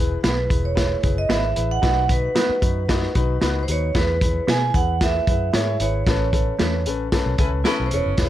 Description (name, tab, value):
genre	uptempo 1960s-style soul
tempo	113 BPM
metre	4/4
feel	straight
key	E major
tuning	A4 = 443 Hz
part	dark upright piano	accompaniment	0.0-8.3 s	C#4 to C#5	-27 LUFS	left 8 dB	none
part	vintage muted fingered electric bass	bass	0.0-8.3 s	E1 to B2	-24 LUFS	equal	none
part	mellow electric guitar	stabs	0.2-7.8 s	A3 to B4	-28 LUFS	right 5 dB	phaser
part	crunchy breakbeat drum kit	drums	0.2-8.3 s	hi-hat, kick drum, snare drum	-22 LUFS	equal	none
part	vibraphone with medium hard mallets	melody	0.3-8.3 s	B4 to G#5	-25 LUFS	right 5 dB	tape echo
part	clear saxophone section	second line	7.4-8.1 s	B3 to B4	-28 LUFS	equal	none
part	congas	percussion	8.2-8.3 s	none	barely audible	none	none
part	tambourine	percussion	8.2-8.3 s	none	-39 LUFS	right 8 dB	none
room	light reverb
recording	none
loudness	-18 LUFS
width	side -12 dB against mid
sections	0.0-8.3 A section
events	band accent 6.1-8.2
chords	0.0 E; 1.8 B; 3.9 E; 6.1 Aadd9